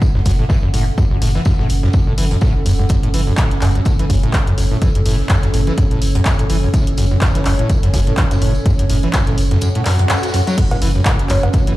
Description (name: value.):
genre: acid house.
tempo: 125 BPM.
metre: 4/4.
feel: swing 56% on 16ths.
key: F# minor pentatonic.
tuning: A4 = 440 Hz.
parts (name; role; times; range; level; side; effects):
electronic kick drum; drums; 0.0-11.6 s; none; -16 LUFS; equal; none.
open jazz drum kit; drums; 0.0-11.8 s; hi-hat, snare drum, tambourine; -33 LUFS; equal; high-pass filter on hats, high-pass filter on snare, high-pass filter on perc, high-pass filter on room.
warbly tape-like pad; texture; 0.0-11.8 s; C#4 to F#5; -25 LUFS; right 2 dB; chorus, built-in reverb, sidechain pumping.
overdriven acid bass; riff; 0.2-11.7 s; F#2 to F#3; -18 LUFS; equal; tube saturation, lush chorus, sidechain pumping, digital delay.
saturated sub bass; bass; 0.3-11.5 s; E1 to F#1; -18 LUFS; equal; sidechain pumping.
punchy analog drum machine; drums; 0.3-11.8 s; cowbell, crash cymbal, handclaps, hi-hat; -23 LUFS; equal; none.
swell; sound effects; 9.7-10.6 s; none; -24 LUFS; right 1 dB; none.
dark analog pad; sustained chords; 11.2-11.8 s; A3 to C#5; -32 LUFS; right 1 dB; none.
breathy mellow concert flute; melody; 11.3-11.4 s; C#5; -22 LUFS; left 1 dB; none.
room: moderate studio ambience, RT60 0.5 s.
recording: played on a big sound system in a bare room, large studio reverb.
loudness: -13 LUFS.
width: side -16 dB against mid.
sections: 0.0-11.8 A section.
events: kick drops out 9.6-10.6; swell 9.7-10.6.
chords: 0.0 F#m.